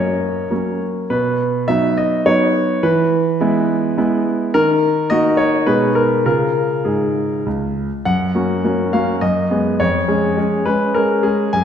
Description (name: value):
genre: classical-period piano sonatina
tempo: 104 BPM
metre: 3/4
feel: rubato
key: unclear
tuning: A4 = 440 Hz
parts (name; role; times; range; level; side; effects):
- clear concert grand piano; solo; 0.0-11.6 s; C#2 to G#5; -15 LUFS; equal; none
room: wet scoring stage reverb, RT60 1.5 s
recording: dark, warm production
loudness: -15 LUFS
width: side -8 dB against mid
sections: 0.0-8.1 A section; 8.1-11.6 B section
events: none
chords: 0.0 F#; 1.1 B; 2.8 E; 4.5 D#m; 5.7 G#m/B; 6.3 C#; 8.1 F#; 9.2 G#m7/F#; 9.8 C#/E#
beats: 0.51 | 1.11 1.70 2.27 | 2.84 3.40 3.97 | 4.54 5.10 5.67 | 6.26 6.86 7.46 | 8.06 8.64 9.22 | 9.80 10.38 10.95 | 11.54